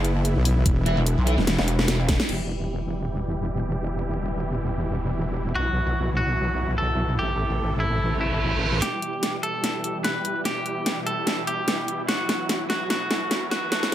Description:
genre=heavy wobble dubstep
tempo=147 BPM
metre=4/4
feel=swing 54% on 16ths, half-time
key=E minor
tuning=A4 = 440 Hz
part: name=supersaw chords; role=sustained chords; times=0.0-13.9 s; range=B2 to A4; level=-30 LUFS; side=equal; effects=sidechain pumping, low-pass filter
part: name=pulsing pluck wobble bass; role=bass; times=0.0-2.2 s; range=E1 to B1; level=-21 LUFS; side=equal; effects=chorus, overdrive
part: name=dubstep drum kit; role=drums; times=0.0-2.4, 8.8-13.9 s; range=crash cymbal, hi-hat, snare drum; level=-26 LUFS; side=equal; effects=none
part: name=wobble bass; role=bass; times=0.4-8.8 s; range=E1 to B1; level=-25 LUFS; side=equal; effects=chorus, overdrive
part: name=electronic kick drum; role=drums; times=0.7-2.2 s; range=none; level=-22 LUFS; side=equal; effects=overdrive
part: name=thick fuzz guitar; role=stabs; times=0.9-1.3 s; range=E4 to E5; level=-31 LUFS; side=right 1 dB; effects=distortion, ping-pong delay
part: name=clean electric guitar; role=melody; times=5.6-13.9 s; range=E4 to B4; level=-27 LUFS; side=equal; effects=vintage 12-bit sampler grit, ping-pong delay
part: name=reverse cymbal and riser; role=sound effects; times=8.1-13.9 s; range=none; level=-33 LUFS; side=right 3 dB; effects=none
room=light reverb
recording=high-pass filter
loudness=-22 LUFS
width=side -12 dB against mid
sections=0.0-2.3 A section; 2.3-8.8 B section; 8.8-13.9 C section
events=drop 0.0-2.3; drum fill 1.5-2.3, 8.8-13.9; band accent 2.2; filter sweep on supersaw synth 2.3-8.8, 8.8-13.9; reverse cymbal 8.1-8.8; build-up 8.8-13.9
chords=0.0 E5; 2.3 Em; 5.6 Bsus4; 7.2 Am; 8.8 Em; 12.1 Bsus4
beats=0.25 | 0.66 1.06 1.47 1.88 | 2.29 2.70 3.11 3.51 | 3.92 4.33 4.74 5.15 | 5.55 5.96 6.37 6.78 | 7.19 7.60 8.00 8.41 | 8.82 9.23 9.64 10.04 | 10.45 10.86 11.27 11.68 | 12.09 12.49 12.90 13.31 | 13.72

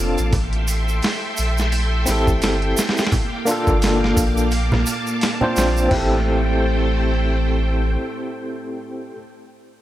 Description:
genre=trip hop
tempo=86 BPM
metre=4/4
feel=swing 58% on 16ths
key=A phrygian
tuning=A4 = 440 Hz
part: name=overdriven tine electric piano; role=accompaniment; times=0.0-9.2 s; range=Bb3 to C5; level=-23 LUFS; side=equal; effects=tremolo, tape echo
part: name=string machine, cellos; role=sustained chords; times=0.0-9.1 s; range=A3 to D6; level=-25 LUFS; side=equal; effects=ensemble chorus
part: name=warm sub bass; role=bass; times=0.0-8.0 s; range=F1 to Bb1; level=-20 LUFS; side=equal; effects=none
part: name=dusty soul sampler-style drum kit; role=drums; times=0.2-6.1 s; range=crash cymbal, hi-hat, kick drum, snare drum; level=-23 LUFS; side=equal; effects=overdrive, studio ambience
part: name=egg shaker and congas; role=percussion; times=0.2-5.9 s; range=none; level=-25 LUFS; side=right 2 dB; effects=none
room=light reverb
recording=none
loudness=-17 LUFS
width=side -14 dB against mid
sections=0.0-5.9 A section; 5.9-8.7 B section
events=none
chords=0.3 Am7; 3.1 Gm7; 4.5 Bbmaj7; 5.9 Am7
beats=| 0.33 1.03 1.73 2.42 | 3.12 3.82 4.52 5.21 | 5.91 6.61 7.31 8.01

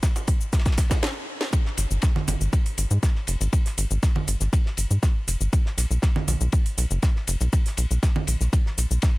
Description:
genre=melodic techno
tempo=120 BPM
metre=4/4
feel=straight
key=unclear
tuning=A4 = 441 Hz
part: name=cloth-damped thuddy drum kit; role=drums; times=0.0-9.2 s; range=ride cymbal, snare drum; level=-37 LUFS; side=left 2 dB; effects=sidechain pumping on cymbals, high-pass filter on cymbals, small room ambience, high-pass filter on snare, high-pass filter on room
part: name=electronic kick drum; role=drums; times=0.0-9.1 s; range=none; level=-21 LUFS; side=equal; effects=small room ambience
part: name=house drum kit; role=drums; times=0.0-9.1 s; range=congas, hi-hat, shaker, snare drum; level=-29 LUFS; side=right 1 dB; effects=sidechain pumping on perc, high-pass filter on perc, small room ambience, sidechain pumping on hats, high-pass filter on hats, high-pass filter on snare
part: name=tight sequencer bass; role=bass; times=1.8-9.0 s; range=F#1 to G#2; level=-22 LUFS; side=equal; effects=sidechain pumping
room=small room reverb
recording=none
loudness=-21 LUFS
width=side -20 dB against mid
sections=0.0-1.5 A section; 1.5-9.2 B section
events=build-up 0.0-1.5; drum fill 0.0-1.0, 1.0-1.5; stop 1.0-1.5; drop 1.5-9.2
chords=none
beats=0.03 0.53 1.03 | 1.53 2.03 2.53 3.03 | 3.53 4.03 4.53 5.03 | 5.53 6.03 6.53 7.03 | 7.53 8.03 8.53 9.03

